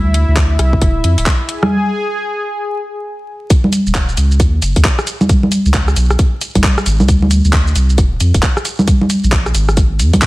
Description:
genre	UK garage, two-step garage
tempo	134 BPM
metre	4/4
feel	swing 62% on 16ths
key	unclear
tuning	A4 = 440 Hz
part	warm analog pad	sustained chords	0.0-3.5 s	Fb4 to Ab5	-21 LUFS	left 1 dB	chorus, tremolo, sidechain pumping
part	saturated sub bass	bass	0.0-10.1 s	D1 to F2	-13 LUFS	equal	sidechain pumping
part	garage drum kit	drums	0.1-10.3 s	congas, handclaps, hi-hat, rim click, shaker	-15 LUFS	equal	studio reverb, soft clipping on snare
part	electronic kick drum	drums	0.4-10.3 s	none	-13 LUFS	equal	studio reverb
room	little or no reverb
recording	dense, heavily limited modern master, vinyl crackle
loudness	-11 LUFS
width	side -19 dB against mid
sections	0.0-3.5 A section; 3.5-10.3 B section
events	break 1.7-3.5; drop 3.5-10.3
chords	0.0 D7sus2; 1.5 N.C.; 3.5 Eb7(no3); 5.1 Db5; 7.1 D7(no3); 8.7 Bb5

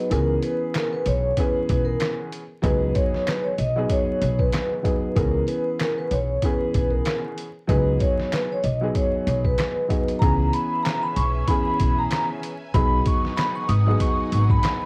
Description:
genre	hip hop, boom-bap hip-hop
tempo	95 BPM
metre	4/4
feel	swing 57% on 16ths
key	C# dorian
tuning	A4 = 440 Hz
part	vibraphone with soft mallets	melody	0.0-14.9 s	A#4 to D#6	-27 LUFS	equal	cassette tape
part	dark upright piano	accompaniment	0.0-14.9 s	E3 to G#4	-30 LUFS	equal	cassette tape
part	upright bass	bass	0.1-14.6 s	G#1 to C#2	-26 LUFS	equal	none
part	trip hop sampler-style drum kit	drums	0.1-14.8 s	handclaps, hi-hat, kick drum, snare drum	-27 LUFS	equal	none
part	finger snap	percussion	0.7-9.8 s	none	-41 LUFS	equal	none
part	rich studio string section	sustained chords	10.2-14.9 s	C#4 to G#5	-40 LUFS	equal	none
room	light reverb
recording	home recording on cassette, vinyl crackle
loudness	-23 LUFS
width	mono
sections	0.0-10.2 A section; 10.2-14.9 B section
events	kick muted 0.1-0.7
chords	0.1 C#m7; 2.6 B6; 5.2 C#m7; 7.7 B6; 10.2 C#m7; 12.7 G#m7

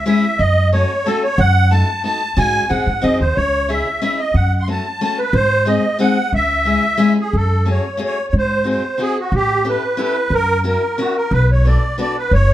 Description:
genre	musette waltz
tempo	182 BPM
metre	3/4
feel	straight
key	C# harmonic minor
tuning	A4 = 441 Hz
part	musette accordion	melody	0.0-12.5 s	F#4 to B#5	-18 LUFS	right 1 dB	none
part	picked steel-string acoustic guitar	accompaniment	0.1-12.2 s	G#3 to A#4	-20 LUFS	left 3 dB	none
part	upright bass	bass	0.4-12.5 s	F#1 to A2	-16 LUFS	equal	none
room	light reverb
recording	band playing live in one room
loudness	-14 LUFS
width	side -13 dB against mid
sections	0.0-7.3 A section; 7.3-12.5 B section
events	none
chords	0.4 F#m; 1.4 D#dim/F#; 2.4 G#7sus4; 2.7 G#7; 3.4 C#madd9; 4.4 F#madd9; 5.3 G#; 6.3 C#m; 7.3 F#madd9; 8.3 G#7; 9.3 A7; 10.3 F#7; 11.3 Bm7

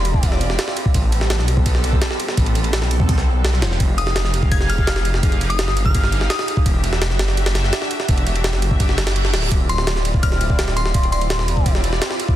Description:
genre	drum and bass, jungle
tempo	168 BPM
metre	4/4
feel	straight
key	D dorian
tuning	A4 = 441 Hz
part	glassy synth bell	melody	0.0-0.2, 4.0-6.4, 9.7-11.6 s	C6 to Ab6	-26 LUFS	left 2 dB	chorus, dub echo
part	lush unison pad	sustained chords	0.0-12.4 s	G3 to F5	-26 LUFS	equal	chorus, phaser
part	detuned saw bass	bass	0.0-12.0 s	D1 to B1	-20 LUFS	equal	none
part	jungle sampler-style drum kit	drums	0.1-12.4 s	kick drum, ride cymbal, snare drum	-19 LUFS	equal	none
part	reverse cymbal	sound effects	9.0-9.5 s	none	-29 LUFS	right 4 dB	none
room	digital ambience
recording	dense, heavily limited modern master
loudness	-16 LUFS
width	side -13 dB against mid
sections	0.0-12.4 A section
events	reverse cymbal 9.0-9.5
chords	0.0 Dm9; 0.9 Am9; 3.8 Fm9; 6.7 Em9; 9.5 Dm9

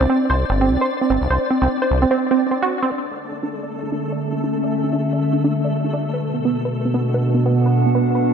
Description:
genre	IDM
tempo	149 BPM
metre	4/4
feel	swing 56% on 16ths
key	D major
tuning	A4 = 440 Hz
part	warbly dusty pluck	arpeggios	0.0-8.2 s	B3 to D5	-20 LUFS	right 2 dB	chorus, ping-pong delay
part	deep acid bass	bass	0.0-2.1 s	G1 to C2	-19 LUFS	equal	none
part	flickering grainy texture	texture	0.0-8.3 s	A3 to D5	-28 LUFS	equal	built-in reverb
part	warbly tape-like pad	sustained chords	3.8-8.3 s	B2 to F#5	-19 LUFS	equal	chorus, built-in reverb
room	moderate echo chamber reverb, RT60 2.3 s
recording	none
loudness	-17 LUFS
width	side -7 dB against mid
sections	0.0-2.9 A section; 2.9-8.3 B section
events	break 2.5-2.9; filter sweep on ambient pad 2.9-8.3; filter sweep on synth pluck 2.9-8.3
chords	0.0 Csus2; 2.9 Dmaj7; 6.1 Bm

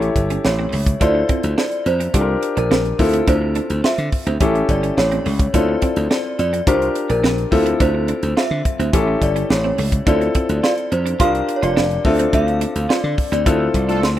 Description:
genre	early-eighties boogie funk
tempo	106 BPM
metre	4/4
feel	straight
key	D minor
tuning	A4 = 441 Hz
part	synth chime	melody	0.0-14.2 s	A4 to C6	-22 LUFS	right 1 dB	ensemble chorus, tremolo
part	clear concert grand piano	accompaniment	0.0-14.2 s	C4 to C#5	-21 LUFS	left 3 dB	none
part	clean electric guitar	riff	0.0-14.2 s	A3 to F4	-27 LUFS	right 6 dB	ensemble chorus
part	slap bass	bass	0.0-14.2 s	F1 to D3	-20 LUFS	equal	none
part	tight funk drum kit	drums	0.0-14.2 s	hi-hat, kick drum, snare drum	-20 LUFS	right 1 dB	none
part	analog synth brass	second line	13.9-14.2 s	A3 to A4	-22 LUFS	equal	chorus, tremolo
room	studio reverb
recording	rough home demo mix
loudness	-15 LUFS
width	side -12 dB against mid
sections	0.0-14.2 A section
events	band accent 12.3-14.2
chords	0.0 A7; 1.0 Dm9; 2.1 C7sus4; 3.0 Dm9; 4.4 A7; 5.5 Dm9; 6.7 C7sus4; 7.5 Dm9; 8.9 A7; 10.1 Dm9; 11.2 C7sus4; 12.0 Dm7; 13.5 Dm9

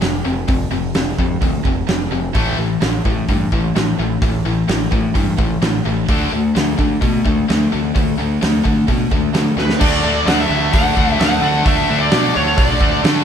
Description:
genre	hard rock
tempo	129 BPM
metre	4/4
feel	straight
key	unclear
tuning	A4 = 442 Hz
part	tight distorted guitar	riff	0.0-13.2 s	F2 to D4	-20 LUFS	left 9 dB	distortion
part	tight distorted guitar	riff	0.0-13.2 s	F2 to D4	-23 LUFS	right 8 dB	distortion
part	growling picked electric bass	bass	0.0-13.2 s	F1 to D3	-21 LUFS	equal	overdrive
part	big rock drum kit	drums	0.0-13.2 s	crash cymbal, hi-hat, kick drum, snare drum	-18 LUFS	right 1 dB	none
part	smooth overdriven lead guitar	melody	9.6-13.0 s	B4 to F#5	-19 LUFS	equal	none
room	light reverb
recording	band playing live in one room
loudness	-14 LUFS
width	side -8 dB against mid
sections	0.0-9.8 A section; 9.8-13.2 B section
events	drum fill 9.6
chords	0.0 F5; 2.4 A5; 6.1 D5; 9.8 D

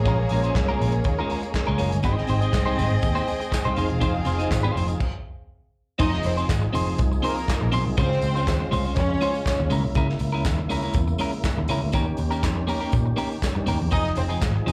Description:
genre	disco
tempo	121 BPM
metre	4/4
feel	straight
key	unclear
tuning	A4 = 442 Hz
part	warm studio violin section	second line	0.0-9.7, 13.9-14.3 s	Bb3 to F5	-31 LUFS	equal	slapback echo
part	percussive tonewheel organ	sustained chords	0.0-14.7 s	Db3 to G5	-35 LUFS	equal	overdrive, chorus vibrato, stopped rotary speaker
part	picked electric bass	bass	0.0-14.7 s	Fb1 to Bb2	-26 LUFS	equal	none
part	clean electric guitar	accompaniment	0.1-14.7 s	F3 to Eb5	-30 LUFS	equal	slapback echo
part	warm soul drum kit	drums	0.1-14.7 s	crash cymbal, handclaps, hi-hat, kick drum, snare drum	-30 LUFS	equal	none
part	tambourine	percussion	2.0-14.7 s	none	-48 LUFS	equal	none
room	little or no reverb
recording	live gig heard through the venue's PA, club reverb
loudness	-23 LUFS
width	mono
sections	0.0-6.0 A section; 6.0-14.7 B section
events	stop 5.0-6.0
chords	0.0 Bbm7; 2.0 Abmaj7; 3.8 Fm7; 8.0 Dbmaj7; 9.7 Dbm6; 11.9 Eb7; 13.9 Fm7

